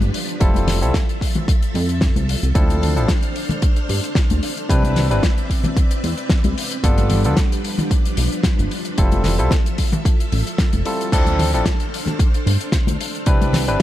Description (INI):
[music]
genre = nu-disco, nu disco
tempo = 112 BPM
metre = 4/4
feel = swing 54% on 16ths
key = D dorian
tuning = A4 = 443 Hz
[part]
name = string machine, full ensemble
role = sustained chords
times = 0.0-13.8 s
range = F3 to F6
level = -27 LUFS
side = equal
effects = ensemble chorus, sidechain pumping
[part]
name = chorused synth bass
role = bass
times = 0.0-13.8 s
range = F1 to G2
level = -19 LUFS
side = equal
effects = none
[part]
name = damped 70s drum kit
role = drums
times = 0.0-13.8 s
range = crash cymbal, hi-hat, snare drum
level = -25 LUFS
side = left 2 dB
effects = none
[part]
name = congas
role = percussion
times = 0.0-13.8 s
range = none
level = -26 LUFS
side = left 2 dB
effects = none
[part]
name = barky tine electric piano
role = accompaniment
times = 0.4-13.8 s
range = F3 to B4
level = -24 LUFS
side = left 1 dB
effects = sidechain pumping, analog delay
[part]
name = electronic kick drum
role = drums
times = 0.4-13.4 s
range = none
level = -18 LUFS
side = equal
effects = none
[sound]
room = light reverb, studio ambience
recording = dark, warm production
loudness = -16 LUFS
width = side -14 dB against mid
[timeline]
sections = 0.0-13.8 A section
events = none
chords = 0.4 Fmaj7; 2.6 Dm7; 4.7 Cmaj9; 6.8 G7; 9.0 Fmaj7; 11.1 Dm7; 13.3 Cmaj9